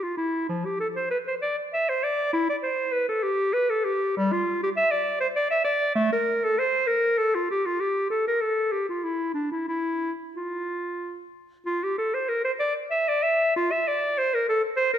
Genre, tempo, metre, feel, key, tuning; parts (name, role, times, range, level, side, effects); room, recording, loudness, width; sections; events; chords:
classical, baroque-style fantasia for unaccompanied clarinet; 90-102 BPM; 3/4; rubato; C major, F major from 4.2 s; A4 = 440 Hz
bright clarinet; solo; 0.0-15.0 s; F3 to E5; -23 LUFS; equal
moderate recital hall reverb, RT60 1.6 s; minimal, uncompressed stereo recording; -23 LUFS; side -9 dB against mid
0.0-11.7 A section; 11.7-15.0 B section